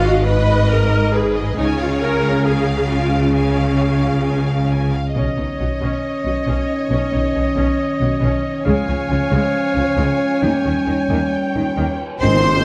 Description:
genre	cinematic, heroic adventure film score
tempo	136 BPM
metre	4/4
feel	straight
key	B lydian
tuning	A4 = 440 Hz
part	warm symphonic violin section	melody	0.0-12.6 s	B4 to B#5	-30 LUFS	equal	none
part	rich symphonic violin section	second line	0.0-12.6 s	B4 to B#5	-31 LUFS	equal	none
part	rich symphonic viola section	accompaniment	0.0-12.6 s	G#3 to B4	-26 LUFS	equal	none
part	clear symphonic cello section	bass	0.0-12.6 s	G#2 to B#4	-23 LUFS	equal	none
part	rich symphonic double bass section	bass	0.0-12.6 s	G#1 to D#2	-23 LUFS	equal	none
part	bright oboe	second line	5.1-12.0 s	D#5 to G5	-31 LUFS	equal	none
part	dark French horn section	sustained chords	5.1-12.0 s	D#3 to C#4	-24 LUFS	equal	none
part	warm clarinet	second line	5.2-12.0 s	C#5	-28 LUFS	equal	none
part	cymbal swell and tam-tam	percussion	8.7-12.6 s	none	-25 LUFS	equal	none
part	warm trombone section	sustained chords	12.2-12.4 s	D#3 to G#3	-29 LUFS	equal	none
room	moderate scoring stage reverb, RT60 2.0 s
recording	dark, warm production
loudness	-18 LUFS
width	mono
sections	0.0-5.1 A section; 5.1-12.2 B section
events	band accent 12.2-12.6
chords	0.0 G#m; 1.6 C#; 5.1 Badd9; 8.7 C#; 10.4 D#7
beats	0.26 0.70 1.14 | 1.58 2.02 2.46 2.90 | 3.35 3.81 4.25 4.70 | 5.15 5.59 6.03 6.47 | 6.91 7.35 7.79 8.23 | 8.66 9.10 9.54 9.98 | 10.43 10.88 11.33 11.78 | 12.23

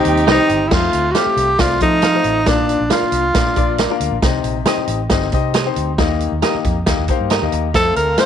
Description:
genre	uptempo 1960s-style soul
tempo	136 BPM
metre	4/4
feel	straight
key	F mixolydian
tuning	A4 = 440 Hz
part	breathy tenor saxophone	melody	0.0-4.0, 7.8-8.3 s	D4 to C5	-16 LUFS	right 1 dB	none
part	muted studio string section	second line	0.0-0.7, 7.7-8.3 s	C4 to G5	-25 LUFS	right 3 dB	none
part	warm concert grand piano	accompaniment	0.0-8.3 s	Bb2 to Bb5	-21 LUFS	left 12 dB	none
part	percussive tonewheel organ	sustained chords	0.0-0.7 s	Eb3 to G4	-26 LUFS	right 1 dB	none
part	vintage drum kit	drums	0.0-8.3 s	crash cymbal, hi-hat, kick drum, snare drum	-19 LUFS	right 1 dB	none
part	vintage muted fingered electric bass	bass	0.1-8.2 s	G1 to F3	-22 LUFS	right 1 dB	none
part	clean electric guitar	stabs	0.3-8.3 s	G4 to F5	-24 LUFS	right 14 dB	none
room	moderate spring reverb, RT60 1.8 s, small room ambience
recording	1960s-style stereo with parts hard left and right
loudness	-14 LUFS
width	side -9 dB against mid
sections	0.7-8.3 A section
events	grand piano fill 6.9-7.7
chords	0.0 Cm; 0.7 F; 2.5 Bb; 4.2 Cm; 6.0 Eb; 7.7 F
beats	0.28 | 0.71 1.15 1.59 2.03 | 2.47 2.91 3.35 3.79 | 4.23 4.67 5.11 5.55 | 5.99 6.43 6.87 7.30 | 7.75 8.18

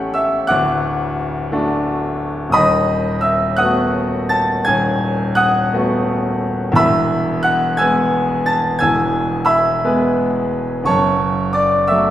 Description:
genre	classical, romantic nocturne for solo piano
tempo	58 BPM (dotted quarters)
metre	12/8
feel	rubato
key	unclear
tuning	A4 = 440 Hz
part	bright concert grand piano	solo	0.0-12.1 s	D1 to A6	-14 LUFS	equal	none
room	wet recital hall reverb, RT60 1.7 s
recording	heard from further back in the room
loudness	-14 LUFS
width	side -12 dB against mid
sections	0.0-12.1 A section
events	none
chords	0.0 A7; 0.5 D; 2.6 B7/D#; 6.8 E; 10.9 F#m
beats	0.51 1.52 | 2.56 3.60 4.68 5.74 | 6.78 7.81 8.83 9.84 | 10.88 11.91

